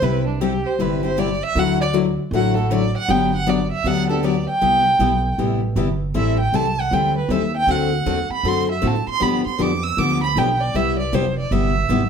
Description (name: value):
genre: acoustic string swing (jazz manouche)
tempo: 157 BPM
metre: 4/4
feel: swing 63% on 8ths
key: G major, C major from 4.6 s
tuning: A4 = 440 Hz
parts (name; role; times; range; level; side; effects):
- warm violin; melody; 0.0-12.1 s; D4 to E6; -21 LUFS; right 3 dB; plate reverb
- picked steel-string acoustic guitar; accompaniment; 0.0-12.0 s; C3 to A4; -21 LUFS; left 5 dB; none
- upright bass; bass; 0.0-12.1 s; F1 to A2; -23 LUFS; right 2 dB; none
room: wet studio reverb, RT60 0.8 s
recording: heard from further back in the room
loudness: -17 LUFS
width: side -7 dB against mid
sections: 0.0-4.6 A section; 4.6-12.1 A section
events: violin solo 0.0-12.1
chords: 0.0 C; 1.6 Dadd9; 3.1 Gmaj7; 4.6 Cmaj7; 6.1 Am7; 7.7 D7; 9.2 G7; 10.7 Cmaj7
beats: | 0.02 0.40 0.79 1.17 | 1.55 1.94 2.32 2.70 | 3.08 3.47 3.85 4.23 | 4.62 5.00 5.38 5.76 | 6.15 6.53 6.91 7.30 | 7.68 8.06 8.45 8.83 | 9.21 9.59 9.98 10.36 | 10.74 11.13 11.51 11.89